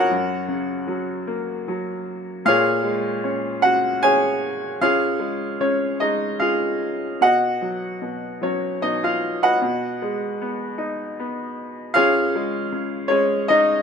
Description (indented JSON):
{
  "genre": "classical, lyrical solo piano",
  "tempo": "76 BPM",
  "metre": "3/4",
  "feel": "rubato",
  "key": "unclear",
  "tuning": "A4 = 436 Hz",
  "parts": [
    { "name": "bright baby grand piano", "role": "solo", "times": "0.0-13.8 s", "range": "F#2 to G#5", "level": "-19 LUFS", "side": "equal", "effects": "none" }
  ],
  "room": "light reverb",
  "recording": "minimal, uncompressed stereo recording",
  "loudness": "-19 LUFS",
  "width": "side -6 dB against mid",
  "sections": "0.0-13.8 A section",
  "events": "none",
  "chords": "0.1 F#; 2.5 A#m7; 4.8 C#; 7.2 B; 9.6 G#m/B; 12.0 C#"
}